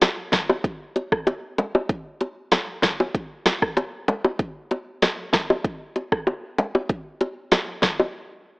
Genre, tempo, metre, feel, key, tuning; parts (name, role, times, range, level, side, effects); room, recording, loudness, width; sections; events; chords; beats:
dancehall; 96 BPM; 4/4; straight
afro-pop drum kit; drums; 0.0-8.0 s; hi-hat, kick drum, rim click, snare drum; -22 LUFS; equal
bongos; percussion; 0.0-8.1 s; -22 LUFS; left 1 dB
light reverb; worn, warbling old tape, cassette tape, warbly pitch drift, AM radio sound; -22 LUFS; side -28 dB against mid
0.0-8.6 A section
break 8.1-8.6
0.02 0.65 1.27 | 1.90 2.52 3.15 3.77 | 4.39 5.02 5.64 6.27 | 6.89 7.52